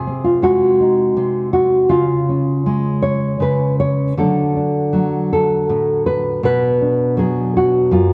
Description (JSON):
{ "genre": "folk, solo fingerstyle acoustic guitar", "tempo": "53 BPM (dotted quarters)", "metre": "6/8", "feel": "rubato", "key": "unclear", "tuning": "A4 = 440 Hz", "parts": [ { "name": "nylon-string guitar", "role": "solo", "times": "0.0-8.1 s", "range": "F#2 to C#5", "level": "-16 LUFS", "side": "equal", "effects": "none" } ], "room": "wet concert hall reverb, RT60 2.2 s", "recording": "worn, warbling old tape, cassette tape, warbly pitch drift", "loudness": "-16 LUFS", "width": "mono", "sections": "0.0-8.1 A section", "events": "none", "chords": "0.0 G#7/B#; 1.9 C#; 4.2 D; 6.4 Bm", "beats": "0.79 | 1.90 3.03 | 4.17 5.32 | 6.44 7.55" }